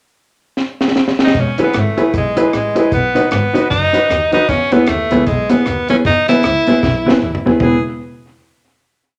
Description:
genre	ska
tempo	153 BPM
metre	4/4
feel	swing 60% on 8ths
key	E major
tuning	A4 = 439 Hz
part	deep reggae drum kit	drums	0.6-7.7 s	hi-hat, kick drum, rim click, snare drum, toms	-21 LUFS	equal	tape echo
part	bright tenor saxophone	melody	1.2-7.8 s	G#3 to G#4	-19 LUFS	equal	none
part	warm double bass	bass	1.3-7.7 s	E1 to E2	-24 LUFS	equal	none
part	mellow electric guitar	accompaniment	1.6-7.8 s	B3 to B4	-19 LUFS	equal	none
part	warm upright piano	stabs	1.6-7.8 s	D#4 to B4	-22 LUFS	equal	none
room	moderate large studio reverb, RT60 0.9 s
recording	none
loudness	-14 LUFS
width	mono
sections	0.0-1.4 pickup bar; 1.4-7.6 A section; 7.6-9.2 final chord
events	drum fill 0.6-1.4, 6.8-7.6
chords	0.0 N.C.; 1.4 E; 2.9 B; 4.5 E

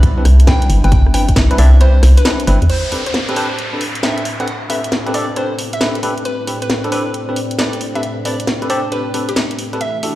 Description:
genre	UK garage, two-step garage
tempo	135 BPM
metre	4/4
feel	swing 66% on 16ths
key	A minor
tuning	A4 = 440 Hz
part	warm analog pad	sustained chords	0.0-10.2 s	A2 to B4	-28 LUFS	equal	chorus, sidechain pumping
part	hollow knocking FM bass	bass	0.0-2.7 s	G1 to E2	-9 LUFS	equal	none
part	electronic kick drum	drums	0.0-1.5 s	none	-13 LUFS	equal	none
part	garage drum kit	drums	0.0-10.1 s	crash cymbal, hi-hat, rim click, snare drum	-21 LUFS	equal	none
part	bell-like tine electric piano	stabs	0.2-10.1 s	C4 to D5	-22 LUFS	equal	lush chorus, tape echo
part	mallet-like synth pluck	melody	0.5-10.0 s	G4 to G5	-24 LUFS	equal	chorus, tape echo
part	downlifter	sound effects	2.7-6.3 s	none	-26 LUFS	equal	none
part	deep dark ambient pad	texture	4.2-10.2 s	C4 to G5	-27 LUFS	left 1 dB	chorus, built-in reverb, sidechain pumping
room	light reverb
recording	played on a big sound system in a bare room, large studio reverb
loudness	-12 LUFS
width	side -16 dB against mid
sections	0.0-2.7 A section; 2.7-10.2 B section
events	kick drops out 1.8-2.7; filter sweep on analog synth pad 2.7-10.2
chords	0.0 Cmaj9; 2.7 Am11

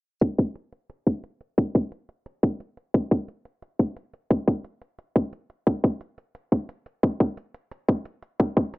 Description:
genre	liquid drum and bass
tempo	176 BPM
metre	4/4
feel	straight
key	none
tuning	none
part	electronic hi-hat	drums	0.2-8.8 s	none	-51 LUFS	right 3 dB	overdrive, small room ambience
part	electronic kick drum	drums	0.2-8.6 s	none	-20 LUFS	equal	overdrive, high-pass filter on kick, small room ambience
room	digital ambience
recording	low-pass filter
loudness	-24 LUFS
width	side -22 dB against mid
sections	0.2-8.8 A section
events	filter sweep 0.2-8.8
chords	none

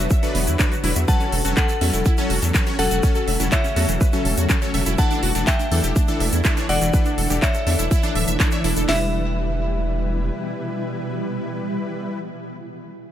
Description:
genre	progressive house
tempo	123 BPM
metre	4/4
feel	straight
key	E dorian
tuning	A4 = 444 Hz
part	glassy synth bell	melody	0.0-12.2 s	A4 to A5	-28 LUFS	left 2 dB	chorus, sidechain pumping, digital delay
part	shimmering ambient pad	sustained chords	0.0-12.2 s	B2 to B4	-30 LUFS	right 1 dB	chorus, built-in reverb, sidechain pumping
part	wide unison pluck	arpeggios	0.0-9.1 s	E3 to E5	-29 LUFS	right 1 dB	phaser, sidechain pumping, digital delay
part	supersaw stab	stabs	0.0-12.2 s	E3 to C#5	-27 LUFS	left 2 dB	sidechain pumping, digital delay
part	round analog bass	bass	0.0-10.3 s	D1 to E2	-22 LUFS	equal	sidechain pumping
part	house drum kit	drums	0.1-9.0 s	hi-hat, kick drum, snare drum	-20 LUFS	equal	none
part	house drum kit	drums	0.1-8.9 s	handclaps, hi-hat	-26 LUFS	equal	none
part	tube shaker	percussion	0.1-8.9 s	none	-32 LUFS	left 2 dB	none
room	digital ambience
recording	none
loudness	-18 LUFS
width	side -11 dB against mid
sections	0.0-8.9 A section; 8.9-12.8 B section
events	drop 0.0-8.9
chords	0.0 Bm; 1.1 F#m/E; 5.0 Asus4/E; 8.9 Em

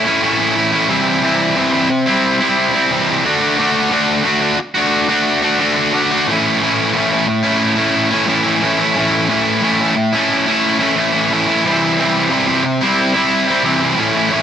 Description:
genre	rock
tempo	89 BPM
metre	4/4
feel	straight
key	unclear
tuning	A4 = 440 Hz
part	crunchy overdriven guitar	solo	0.0-14.4 s	A2 to F#4	-12 LUFS	equal	none
room	moderate studio reverb, RT60 0.8 s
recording	nothing above 10.7 kHz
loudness	-12 LUFS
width	side -8 dB against mid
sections	0.0-14.4 A section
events	none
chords	0.0 A; 0.9 C; 3.2 D; 6.3 A; 11.6 C

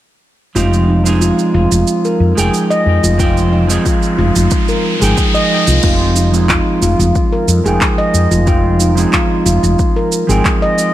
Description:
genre	organic downtempo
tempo	91 BPM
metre	4/4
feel	straight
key	F minor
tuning	A4 = 438 Hz
part	clean electric guitar	accompaniment	0.5-10.9 s	F3 to G5	-16 LUFS	right 3 dB	sidechain pumping, low-pass filter, ping-pong delay
part	handpan	arpeggios	0.6-10.9 s	Eb4 to Eb5	-16 LUFS	left 1 dB	low-pass filter, ping-pong delay
part	woody fretless electric bass	bass	0.6-10.4 s	F1 to F2	-13 LUFS	left 1 dB	sidechain pumping
part	organic electronic drum kit	drums	0.6-10.9 s	crash cymbal, handclaps, shaker	-20 LUFS	right 3 dB	studio reverb
part	riser	sound effects	2.9-5.8 s	none	-22 LUFS	left 1 dB	none
part	electronic kick drum	drums	3.2-10.6 s	none	-16 LUFS	left 1 dB	overdrive, studio reverb
room	light reverb, digital ambience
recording	none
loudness	-10 LUFS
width	side -13 dB against mid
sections	0.6-5.8 A section; 5.8-10.9 B section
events	riser 2.9-5.8; filter sweep on clean electric guitar 5.8-10.9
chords	0.6 Fm9

